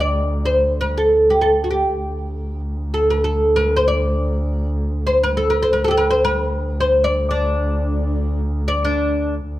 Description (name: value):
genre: Turkish makam ensemble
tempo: free time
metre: none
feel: none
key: D makam hicaz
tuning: A4 = 438 Hz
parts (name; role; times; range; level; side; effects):
- oud; melody; 0.0-9.3 s; D4 to D5; -17 LUFS; equal; none
- warm double bass; drone; 0.0-9.6 s; D2; -22 LUFS; right 1 dB; none
room: light reverb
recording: close, detailed microphones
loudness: -16 LUFS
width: side -15 dB against mid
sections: 0.0-9.5 A section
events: none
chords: none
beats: free time